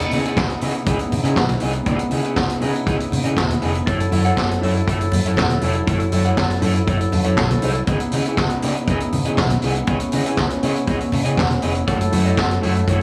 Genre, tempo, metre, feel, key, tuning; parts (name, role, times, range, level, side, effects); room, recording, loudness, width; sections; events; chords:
disco; 120 BPM; 4/4; straight; C# minor; A4 = 438 Hz
electric guitar at the edge of break-up; accompaniment; 0.0-13.0 s; A3 to F#5; -26 LUFS; equal; harmonic tremolo
percussive tonewheel organ; sustained chords; 0.0-13.0 s; C#3 to A4; -28 LUFS; equal; slow rotary speaker
fingered electric bass; bass; 0.0-13.0 s; E1 to C#3; -24 LUFS; equal
vintage drum kit; drums; 0.0-13.0 s; handclaps, hi-hat, kick drum, snare drum; -25 LUFS; equal
congas; percussion; 0.1-13.0 s; -30 LUFS; equal
light reverb; small room ambience; -19 LUFS; mono
0.0-13.0 A section
0.0 C#m9; 3.9 F#m7; 7.9 C#m9; 11.9 F#m7